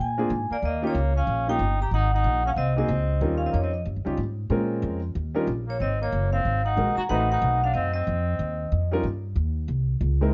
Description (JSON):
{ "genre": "jazz, small-group swing and bop", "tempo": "185 BPM", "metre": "4/4", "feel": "swing 62% on 8ths", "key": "unclear", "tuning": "A4 = 439 Hz", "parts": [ { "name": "vibraphone with medium hard mallets", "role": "melody", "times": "0.0-8.9 s", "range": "Db5 to Bb5", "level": "-30 LUFS", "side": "equal", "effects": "plate reverb" }, { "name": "upright bass", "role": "bass", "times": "0.0-10.3 s", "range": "Gb1 to Bb2", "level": "-28 LUFS", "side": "equal", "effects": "none" }, { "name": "warm concert grand piano", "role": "accompaniment", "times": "0.2-10.3 s", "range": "G3 to Cb5", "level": "-30 LUFS", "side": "equal", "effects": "none" }, { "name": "mellow trumpet", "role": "second line", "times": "0.5-8.9 s", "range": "Bb3 to G4", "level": "-34 LUFS", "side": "equal", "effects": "none" } ], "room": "moderate club reverb, RT60 0.6 s", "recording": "dark, warm production, nothing above 7.5 kHz", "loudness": "-25 LUFS", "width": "mono", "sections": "0.6-10.3 A section", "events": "none", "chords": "0.0 Bb7; 0.6 Eb7; 1.9 Ab7; 3.2 Eb7; 4.5 Bbm7; 5.2 Eb7; 5.8 Ab7; 7.1 Adim7; 8.4 Eb; 9.7 C7alt" }